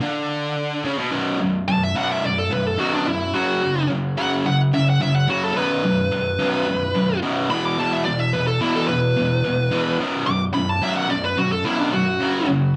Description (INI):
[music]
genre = metal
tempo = 108 BPM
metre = 4/4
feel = straight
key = B minor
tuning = A4 = 441 Hz
[part]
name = high-gain distorted guitar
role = riff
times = 0.0-12.7 s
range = B1 to F#3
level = -23 LUFS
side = equal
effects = distortion
[part]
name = high-gain lead guitar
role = melody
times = 1.7-12.5 s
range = D4 to D6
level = -25 LUFS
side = equal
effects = distortion, analog delay
[sound]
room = light reverb, digital ambience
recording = faint mains hum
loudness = -21 LUFS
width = mono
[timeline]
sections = 0.0-1.1 A section; 1.1-12.8 B section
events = half time 1.1-12.8; lead electric guitar solo 1.1-12.8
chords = 0.0 N.C.; 1.1 B5; 3.3 F#5; 5.6 B5; 7.5 E5; 10.0 B5; 12.2 F#5